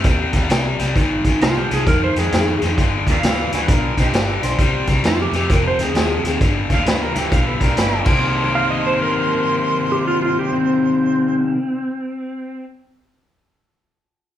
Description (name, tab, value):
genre	electric blues shuffle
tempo	132 BPM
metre	4/4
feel	swing 64% on 8ths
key	C minor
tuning	A4 = 440 Hz
part	cranked stack guitar	riff	0.0-11.6 s	F2 to D4	-20 LUFS	left 3 dB	overdrive, spring reverb
part	vintage muted fingered electric bass	bass	0.0-11.3 s	F1 to F2	-23 LUFS	equal	none
part	vintage drum kit	drums	0.0-8.1 s	crash cymbal, hi-hat, kick drum, snare drum	-19 LUFS	equal	none
part	clean lap steel guitar	melody	1.4-12.6 s	C4 to F5	-20 LUFS	equal	none
part	warm harmonica	second line	3.1-11.4 s	C4 to F5	-24 LUFS	right 2 dB	overdrive
room	wet large studio reverb, RT60 0.8 s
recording	band playing live in one room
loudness	-15 LUFS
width	side -11 dB against mid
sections	0.0-8.2 A section; 8.2-11.9 B section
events	drum fill 8.0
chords	0.0 Cm; 1.0 Ab; 2.8 G7; 4.6 C5; 5.5 Fm7; 6.4 G; 8.0 Cm9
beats	0.05 0.50 | 0.96 1.41 1.87 2.32 | 2.78 3.23 3.69 4.14 | 4.59 5.05 5.50 5.96 | 6.42 6.87 7.33 7.78 | 8.23 8.69 9.14 9.60 | 10.05 10.51 10.96 11.42